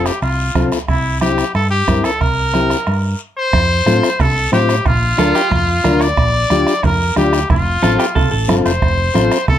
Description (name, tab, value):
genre	latin, cumbia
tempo	182 BPM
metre	4/4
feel	straight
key	F major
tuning	A4 = 439 Hz
part	clear trumpet	melody	0.0-9.6 s	E4 to D5	-18 LUFS	equal	none
part	combo organ	accompaniment	0.0-9.4 s	C4 to C5	-17 LUFS	left 4 dB	none
part	hollow-body short-scale fingered electric bass	bass	0.0-9.6 s	F1 to A2	-18 LUFS	equal	none
part	bombo	percussion	0.1-9.6 s	none	-20 LUFS	right 3 dB	none
part	guiro	percussion	0.1-9.6 s	none	-30 LUFS	left 6 dB	none
part	congas	percussion	0.2-9.6 s	none	-22 LUFS	right 2 dB	none
part	clean electric guitar	second line	5.2-8.6 s	F4 to A4	-20 LUFS	right 3 dB	none
room	light reverb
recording	close, detailed microphones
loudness	-13 LUFS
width	side -11 dB against mid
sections	0.0-3.5 A section; 3.5-9.6 B section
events	stop 3.2-3.5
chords	0.0 F; 0.9 C7; 3.5 F; 4.9 Bb; 7.5 F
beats	0.22 0.55 | 0.89 1.22 1.55 1.88 | 2.21 2.54 2.87 3.21 | 3.54 3.87 4.20 4.53 | 4.86 5.19 5.52 5.85 | 6.18 6.51 6.84 7.17 | 7.50 7.83 8.16 8.49 | 8.82 9.15 9.48